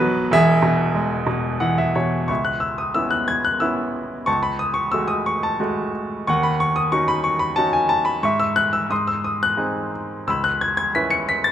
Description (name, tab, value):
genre	classical, lyrical solo piano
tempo	90 BPM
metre	3/4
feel	uneven beats, rubato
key	C# minor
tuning	A4 = 440 Hz
part	bright baby grand piano	solo	0.0-11.5 s	E1 to C#7	-18 LUFS	equal	none
room	moderate recital hall reverb, RT60 1.5 s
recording	none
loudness	-18 LUFS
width	side -10 dB against mid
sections	0.0-2.3 A section; 2.3-11.5 B section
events	grand piano fill 1.3-2.3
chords	0.3 E; 2.3 C#m7; 4.3 F#madd9/C#; 6.3 D#m7b5; 8.2 C#madd11/G#; 8.9 G#; 10.3 C#m7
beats	| 0.32 0.95 1.61 | 2.30 2.96 3.62 | 4.28 4.94 5.61 | 6.28 6.93 7.58 | 8.24 8.91 9.59 | 10.28 10.95